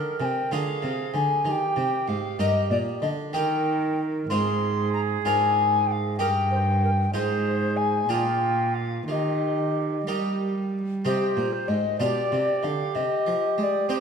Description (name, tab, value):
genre	classical, baroque-style sonata movement with continuo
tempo	63 BPM (dotted quarters)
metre	6/8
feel	straight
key	Eb major from 3.3 s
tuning	A4 = 440 Hz
part	mellow alto recorder	melody	0.0-14.0 s	G4 to C6	-25 LUFS	left 4 dB	none
part	bright baroque flute	second line	0.0-14.0 s	F4 to C5	-30 LUFS	right 9 dB	none
part	harpsichord	accompaniment	0.0-14.0 s	G2 to Bb4	-32 LUFS	right 2 dB	none
part	warm cello	bass	0.0-14.0 s	G2 to C4	-28 LUFS	right 2 dB	none
room	wet recital hall reverb, RT60 1.5 s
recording	none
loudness	-22 LUFS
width	side -6 dB against mid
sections	0.0-11.1 A section; 11.1-14.0 A section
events	none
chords	0.0 Eb; 0.5 Bb7; 1.5 Eb; 4.3 Fm/Ab; 5.2 Bb7/Ab; 6.2 Eb/G; 7.1 Fm7/Ab; 8.1 Bb7; 9.1 Eb; 11.1 Cm; 12.0 G7/B; 13.0 Cm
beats	0.52 | 1.46 2.40 | 3.33 4.30 | 5.25 6.19 | 7.13 8.09 | 9.08 10.07 | 11.05 12.00 | 12.95 13.89